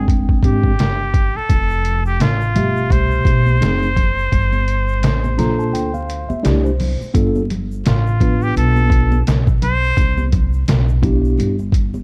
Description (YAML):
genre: hip hop, jazz-hop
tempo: 85 BPM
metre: 4/4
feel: swing 58% on 16ths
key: unclear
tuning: A4 = 438 Hz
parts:
  - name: trumpet with straight mute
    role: melody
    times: 0.0-10.3 s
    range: F4 to C5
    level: -24 LUFS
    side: equal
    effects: none
  - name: mellow tine electric piano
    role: accompaniment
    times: 0.0-11.6 s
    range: B2 to Bb5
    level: -23 LUFS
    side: equal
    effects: none
  - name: upright bass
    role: bass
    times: 0.0-12.0 s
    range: F1 to D2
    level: -20 LUFS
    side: equal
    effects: none
  - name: trip hop sampler-style drum kit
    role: drums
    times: 0.1-11.9 s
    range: hi-hat, kick drum, snare drum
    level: -20 LUFS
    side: equal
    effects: none
  - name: egg shaker and congas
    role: percussion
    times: 1.5-12.0 s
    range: none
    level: -29 LUFS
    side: equal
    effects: none
room: small room ambience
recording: dark, warm production, vinyl crackle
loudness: -16 LUFS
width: mono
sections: 0.0-7.1 A section; 7.1-12.0 B section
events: tine electric piano fill 5.0-7.1; kick muted 5.7-7.1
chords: 0.0 Fm6; 1.5 Fmaj9#11; 3.6 F#dim7; 4.3 Gm9; 6.4 C69; 7.1 G9; 10.0 Cmaj7